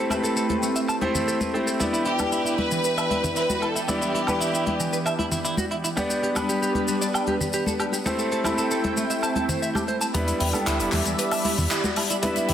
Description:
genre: nu-disco, nu disco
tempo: 115 BPM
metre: 4/4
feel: straight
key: E minor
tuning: A4 = 440 Hz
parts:
  - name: bright grand piano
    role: accompaniment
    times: 0.0-12.5 s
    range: G3 to B5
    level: -27 LUFS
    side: equal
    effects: low-pass filter, slapback echo
  - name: lush unison pad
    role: sustained chords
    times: 0.2-12.5 s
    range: E3 to B5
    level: -30 LUFS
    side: equal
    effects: chorus, phaser
  - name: direct-recorded clean electric guitar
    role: riff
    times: 0.0-12.5 s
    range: E3 to A5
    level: -29 LUFS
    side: right 3 dB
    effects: lush chorus, low-pass filter
  - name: tight funk drum kit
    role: drums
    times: 0.1-12.5 s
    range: handclaps, hi-hat, shaker, woodblock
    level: -30 LUFS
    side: left 2 dB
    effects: high-pass filter on hats, studio reverb, high-pass filter on perc, high-pass filter on snare, high-pass filter on room
  - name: congas, maracas and bongos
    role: percussion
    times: 0.1-12.5 s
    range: none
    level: -31 LUFS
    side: left 2 dB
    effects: none
  - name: bright studio violin section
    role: melody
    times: 2.1-4.9, 10.1-12.5 s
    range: G4 to G5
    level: -28 LUFS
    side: equal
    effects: low-pass filter, analog delay
  - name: chorused synth bass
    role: bass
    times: 10.1-12.5 s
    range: E1 to E2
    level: -27 LUFS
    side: equal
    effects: none
room: moderate plate reverb, RT60 1.7 s, small room ambience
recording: dense, heavily limited modern master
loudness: -22 LUFS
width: side -10 dB against mid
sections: 0.0-10.1 A section; 10.1-12.5 B section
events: filter sweep on analog synth pad 0.0-10.1; build-up 10.1-12.5; filter sweep on clean electric guitar 10.1-12.5; filter sweep on violin section 10.1-12.5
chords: 0.0 Am7; 1.8 Em7; 6.0 Gmaj7; 8.1 Am7; 10.1 Em7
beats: 0.23 0.76 1.28 | 1.80 2.32 2.84 3.36 | 3.89 4.41 4.93 5.45 | 5.97 6.49 7.02 7.54 | 8.06 8.58 9.10 9.62 | 10.15 10.67 11.19 11.71 | 12.23

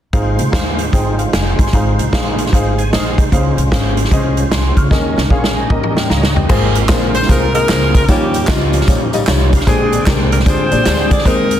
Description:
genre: uptempo gospel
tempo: 151 BPM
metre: 4/4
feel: swing 64% on 8ths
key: Ab major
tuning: A4 = 441 Hz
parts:
  - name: warm grand piano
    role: accompaniment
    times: 0.1-11.6 s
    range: Ab2 to F6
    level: -19 LUFS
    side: left 3 dB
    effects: none
  - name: tonewheel organ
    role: sustained chords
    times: 0.1-11.6 s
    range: D3 to Bb5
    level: -23 LUFS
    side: right 3 dB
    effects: slow rotary speaker, overdrive, chorus vibrato
  - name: upright bass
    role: bass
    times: 0.1-11.6 s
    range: F1 to Eb2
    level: -18 LUFS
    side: equal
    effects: none
  - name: swinging big-band drum kit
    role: drums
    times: 0.1-11.6 s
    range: crash cymbal, hi-hat, kick drum, snare drum, toms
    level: -15 LUFS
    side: equal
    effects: none
  - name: tambourine and handclaps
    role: percussion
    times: 6.5-11.6 s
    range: none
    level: -28 LUFS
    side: right 1 dB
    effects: none
  - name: bright saxophone section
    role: melody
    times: 7.2-11.6 s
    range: Bb3 to D5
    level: -17 LUFS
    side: left 1 dB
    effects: none
room: light reverb, studio reverb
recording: dense, heavily limited modern master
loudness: -11 LUFS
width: side -10 dB against mid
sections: 0.1-6.5 A section; 6.5-11.6 B section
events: drum fill 4.9-6.5; grand piano fill 5.3-6.5; tonewheel organ fill 5.9-6.5, 9.1-9.7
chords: 0.1 Ab6; 1.7 Fm7/Ab; 3.3 Dbmaj7; 4.9 Eb7sus4; 5.7 Eb7; 6.5 Ab69; 8.1 Eb9; 9.7 Bb13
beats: | 0.13 0.53 0.93 1.33 | 1.73 2.12 2.52 2.92 | 3.32 3.72 4.11 4.51 | 4.91 5.31 5.70 6.10 | 6.50 6.89 7.29 7.69 | 8.08 8.48 8.88 9.27 | 9.67 10.06 10.46 10.86 | 11.25

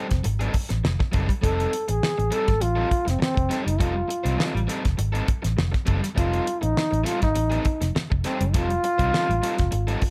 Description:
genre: funk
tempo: 101 BPM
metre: 4/4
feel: straight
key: F mixolydian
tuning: A4 = 440 Hz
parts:
  - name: dark trombone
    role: melody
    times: 0.0-10.1 s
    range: C4 to A4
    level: -28 LUFS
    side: equal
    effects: none
  - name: crunchy overdriven guitar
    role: accompaniment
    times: 0.0-10.1 s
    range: G3 to C5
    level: -33 LUFS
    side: equal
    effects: none
  - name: vintage muted fingered electric bass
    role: bass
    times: 0.1-9.9 s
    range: F1 to C2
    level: -28 LUFS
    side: equal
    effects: none
  - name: damped 70s drum kit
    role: drums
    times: 0.1-10.1 s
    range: hi-hat, kick drum, snare drum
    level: -27 LUFS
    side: equal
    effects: none
room: light reverb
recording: none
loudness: -24 LUFS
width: mono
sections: 0.0-10.1 A section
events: none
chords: 0.0 F9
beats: 0.25 0.84 | 1.44 2.03 2.62 3.21 | 3.81 4.40 4.99 5.58 | 6.18 6.77 7.36 7.95 | 8.55 9.14 9.73

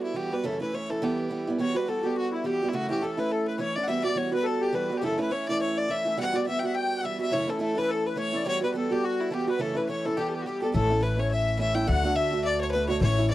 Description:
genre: celtic folk, Celtic reel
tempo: 210 BPM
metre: 4/4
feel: swing 57% on 8ths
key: E dorian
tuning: A4 = 440 Hz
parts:
  - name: rich fiddle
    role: melody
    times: 0.0-13.3 s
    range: E4 to G5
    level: -29 LUFS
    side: left 1 dB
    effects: none
  - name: picked acoustic archtop guitar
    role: accompaniment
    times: 0.0-13.3 s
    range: D2 to G4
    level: -28 LUFS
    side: right 3 dB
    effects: none
  - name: accordion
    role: second line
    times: 1.6-13.3 s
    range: E4 to G5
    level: -32 LUFS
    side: left 6 dB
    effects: none
  - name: upright bass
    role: bass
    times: 10.7-13.3 s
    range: A1 to D2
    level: -26 LUFS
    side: left 1 dB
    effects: none
room: light reverb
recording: dry, close 1970s-style studio recording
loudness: -24 LUFS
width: side -15 dB against mid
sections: 0.0-1.6 A section; 1.6-10.7 A section; 10.7-13.3 B section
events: none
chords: 0.4 F#m7; 1.0 Em; 1.6 Emadd9; 2.7 F#m7; 3.9 Emadd9; 5.0 F#m7; 6.2 Emadd9; 7.3 F#m7; 8.5 Emadd9; 9.6 F#m7; 10.2 Em; 10.7 A; 11.9 D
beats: 0.16 | 0.45 0.73 1.02 1.31 | 1.59 1.88 2.17 2.46 | 2.74 3.03 3.31 3.60 | 3.89 4.17 4.46 4.75 | 5.03 5.32 5.61 5.89 | 6.18 6.46 6.75 7.04 | 7.32 7.61 7.89 8.18 | 8.46 8.75 9.03 9.32 | 9.60 9.89 10.17 10.46 | 10.74 11.03 11.31 11.60 | 11.88 12.16 12.45 12.73 | 13.02 13.30

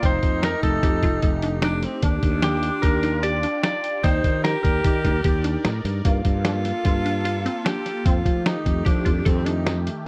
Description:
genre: progressive instrumental, band music in an uneven meter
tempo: 149 BPM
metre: 5/4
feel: straight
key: F mixolydian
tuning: A4 = 442 Hz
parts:
  - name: lightly driven lead guitar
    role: melody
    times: 0.0-5.2 s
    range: G4 to D5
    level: -27 LUFS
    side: equal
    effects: slapback echo
  - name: clear alto saxophone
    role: second line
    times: 0.0-9.8 s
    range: C4 to G4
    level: -30 LUFS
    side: equal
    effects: slapback echo, plate reverb
  - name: phased analog pad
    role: accompaniment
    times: 0.0-10.0 s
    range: Eb3 to D5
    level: -35 LUFS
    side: equal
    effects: phaser, chorus
  - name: resonant blip pluck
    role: arpeggios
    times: 0.0-9.9 s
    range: Eb3 to A4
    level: -33 LUFS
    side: equal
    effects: phaser, slapback echo
  - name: sustaining fretless electric bass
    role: bass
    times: 0.0-9.9 s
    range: F1 to F3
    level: -27 LUFS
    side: equal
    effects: none
  - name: lo-fi sampler-style drum kit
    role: drums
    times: 0.0-10.0 s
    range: hi-hat, kick drum, snare drum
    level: -25 LUFS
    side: equal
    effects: none
room: light reverb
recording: none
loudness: -22 LUFS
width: mono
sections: 0.0-10.1 A section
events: none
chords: 0.0 F7; 2.0 Ebmaj7; 4.0 Cm7/Eb; 6.1 Gm7; 8.1 F7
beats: | 0.03 0.43 0.83 1.23 1.63 | 2.04 2.44 2.84 3.24 3.64 | 4.04 4.45 4.85 5.25 5.65 | 6.05 6.46 6.86 7.26 7.66 | 8.06 8.46 8.87 9.27 9.67

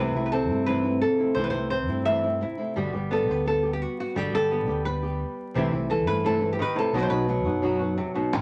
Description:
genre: flamenco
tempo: 172 BPM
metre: 4/4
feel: straight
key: unclear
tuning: A4 = 440 Hz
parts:
  - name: flamenco guitar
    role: melody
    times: 0.0-8.4 s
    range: B2 to E5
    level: -27 LUFS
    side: equal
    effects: none
  - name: flamenco guitar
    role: stabs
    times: 0.0-8.3 s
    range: B2 to G4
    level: -33 LUFS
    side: equal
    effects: none
  - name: fingered electric bass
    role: bass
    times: 0.0-8.4 s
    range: G1 to G2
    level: -34 LUFS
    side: equal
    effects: none
room: wet studio ambience, RT60 0.5 s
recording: vinyl crackle, nothing above 10.7 kHz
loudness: -26 LUFS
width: mono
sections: 0.0-8.3 A section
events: none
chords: 0.0 C6; 2.8 G; 5.6 C6; 6.9 B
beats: 0.33 0.68 1.03 | 1.37 1.72 2.07 2.42 | 2.77 3.12 3.46 3.81 | 4.16 4.51 4.86 5.20 | 5.55 5.90 6.25 6.59 | 6.94 7.29 7.64 7.98 | 8.33

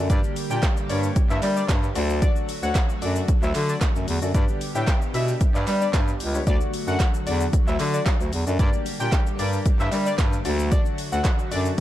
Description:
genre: dance-pop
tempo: 113 BPM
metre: 4/4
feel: straight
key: D major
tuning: A4 = 440 Hz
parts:
  - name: warm concert grand piano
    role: accompaniment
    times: 0.0-11.8 s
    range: D4 to E5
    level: -32 LUFS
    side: left 4 dB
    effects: sidechain pumping
  - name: chorused pulse-width pad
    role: sustained chords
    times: 0.0-11.8 s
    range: D3 to G4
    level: -32 LUFS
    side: equal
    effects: sidechain pumping
  - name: bright bass clarinet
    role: bass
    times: 0.0-11.7 s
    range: C#2 to G3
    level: -24 LUFS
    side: equal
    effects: sidechain pumping
  - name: fat analog lead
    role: melody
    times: 0.1-11.6 s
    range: D5 to G5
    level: -32 LUFS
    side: left 1 dB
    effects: chorus, tape echo
  - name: deep house drum kit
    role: drums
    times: 0.1-11.8 s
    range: handclaps, hi-hat, kick drum, shaker, snare drum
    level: -23 LUFS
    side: equal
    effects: none
  - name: group handclap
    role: percussion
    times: 0.6-11.4 s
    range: none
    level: -38 LUFS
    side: right 8 dB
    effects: none
room: little or no reverb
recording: dark, warm production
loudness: -20 LUFS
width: side -13 dB against mid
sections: 0.0-11.8 A section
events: none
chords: 0.1 Gm; 2.0 D; 4.3 G; 6.5 D; 8.6 Gm; 10.5 D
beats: | 0.10 0.63 1.16 1.69 | 2.22 2.75 3.28 3.81 | 4.35 4.88 5.41 5.94 | 6.47 7.00 7.53 8.06 | 8.59 9.12 9.65 10.19 | 10.72 11.25 11.78

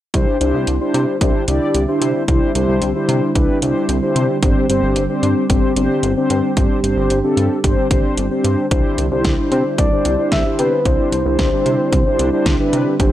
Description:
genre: synth-pop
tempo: 112 BPM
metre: 4/4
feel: straight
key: C major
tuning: A4 = 442 Hz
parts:
  - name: mellow synth brass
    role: accompaniment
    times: 0.1-13.1 s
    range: C4 to D5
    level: -18 LUFS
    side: left 1 dB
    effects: chorus
  - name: brassy analog pad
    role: sustained chords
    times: 0.1-13.1 s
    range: D3 to G4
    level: -24 LUFS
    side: right 3 dB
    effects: chorus
  - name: chorused synth bass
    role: bass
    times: 0.1-13.1 s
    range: G1 to C3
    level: -20 LUFS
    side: equal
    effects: none
  - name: pop drum kit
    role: drums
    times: 0.1-13.1 s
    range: hi-hat, kick drum, snare drum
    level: -18 LUFS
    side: equal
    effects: none
  - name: soft octave-layered synth lead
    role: melody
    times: 9.5-12.7 s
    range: B4 to E5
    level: -20 LUFS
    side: left 1 dB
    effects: chorus, tape echo
room: digital ambience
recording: dry, gritty hardware recording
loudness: -14 LUFS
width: side -13 dB against mid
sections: 0.1-8.7 A section; 8.7-13.1 B section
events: none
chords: 0.1 Cadd9; 4.4 Gsus4; 8.7 Cadd9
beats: | 0.14 0.68 1.21 1.75 | 2.28 2.82 3.35 3.89 | 4.42 4.96 5.50 6.03 | 6.57 7.10 7.64 8.18 | 8.71 9.25 9.78 10.32 | 10.85 11.39 11.93 12.46 | 13.00

